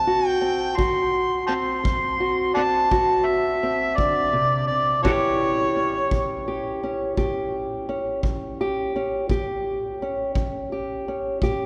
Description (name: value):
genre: acoustic country blues, solo or duo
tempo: 56 BPM (dotted quarters)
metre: 12/8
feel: straight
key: A mixolydian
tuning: A4 = 440 Hz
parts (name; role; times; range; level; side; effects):
- overdriven harmonica; melody; 0.0-6.4 s; F#4 to C6; -25 LUFS; equal; none
- fingerpicked old ladder-braced acoustic guitar; accompaniment; 0.0-11.7 s; A2 to G4; -27 LUFS; equal; none
- kick drum; drums; 0.8-11.6 s; none; -32 LUFS; equal; none
room: wet cathedral reverb, RT60 4.3 s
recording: recorded in a church or concert hall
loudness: -23 LUFS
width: mono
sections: 0.0-11.7 A section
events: none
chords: 0.0 D7; 5.0 A7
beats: | 0.78 1.85 2.91 3.97 | 5.04 6.10 7.16 8.23 | 9.29 10.35 11.41